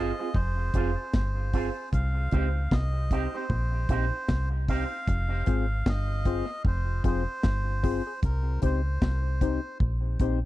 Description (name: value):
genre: dub reggae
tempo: 76 BPM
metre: 4/4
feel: swing 59% on 16ths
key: F minor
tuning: A4 = 440 Hz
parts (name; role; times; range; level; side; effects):
- melodica; melody; 0.0-9.8 s; Bb4 to F5; -35 LUFS; right 1 dB; tape echo
- electric guitar with an envelope filter; accompaniment; 0.0-4.8 s; C4 to C5; -34 LUFS; right 5 dB; spring reverb, tape echo
- deep dub fingered electric bass; bass; 0.0-10.4 s; F1 to Db2; -27 LUFS; equal; none
- deep reggae drum kit; drums; 0.3-10.4 s; hi-hat, kick drum, snare drum; -27 LUFS; equal; none
- percussive organ stab; stabs; 5.5-10.4 s; C4 to C5; -32 LUFS; left 7 dB; chorus, tape echo
room: studio reverb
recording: dry, close 1970s-style studio recording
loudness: -25 LUFS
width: side -16 dB against mid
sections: 0.0-10.5 A section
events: break 0.0-5.1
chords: 0.0 Fm; 1.9 Cm; 5.1 Fm; 8.2 Cm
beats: 0.35 1.14 | 1.93 2.71 3.50 4.29 | 5.08 5.87 6.65 7.44 | 8.23 9.02 9.81